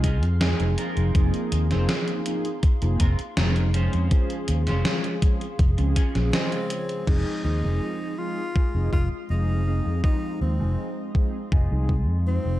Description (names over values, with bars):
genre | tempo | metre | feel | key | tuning
vaporwave | 81 BPM | 4/4 | straight | F minor | A4 = 439 Hz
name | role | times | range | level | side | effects
mellow synth brass | accompaniment | 0.0-12.6 s | Db3 to C5 | -30 LUFS | right 1 dB | wide subtle chorus, tape echo
warbly tape-like pad | sustained chords | 0.0-12.6 s | Ab3 to F6 | -38 LUFS | right 1 dB | chorus, built-in reverb, phaser
clean electric guitar | riff | 0.0-12.2 s | C4 to Ab5 | -37 LUFS | right 1 dB | lush chorus, low-pass filter, tape echo
fingered electric bass | bass | 0.0-12.6 s | F1 to F2 | -23 LUFS | equal | none
electronic kick drum | drums | 0.0-12.0 s | none | -21 LUFS | equal | overdrive, vintage 12-bit sampler grit
gated 80s digital drum machine | drums | 0.0-7.2 s | crash cymbal, hi-hat, snare drum | -29 LUFS | equal | gated reverb, gated reverb snare, vintage 12-bit sampler grit
warm tenor saxophone | melody | 6.3-12.6 s | C4 to F4 | -33 LUFS | equal | tape echo
room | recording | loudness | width
light reverb | none | -21 LUFS | side -15 dB against mid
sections
0.0-7.1 A section; 7.1-12.6 B section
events
clean electric guitar fill 6.0-7.1; filter sweep on clean electric guitar 7.1-12.6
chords
0.0 Ab69/F; 3.7 Dbmaj7/F; 7.1 Fm7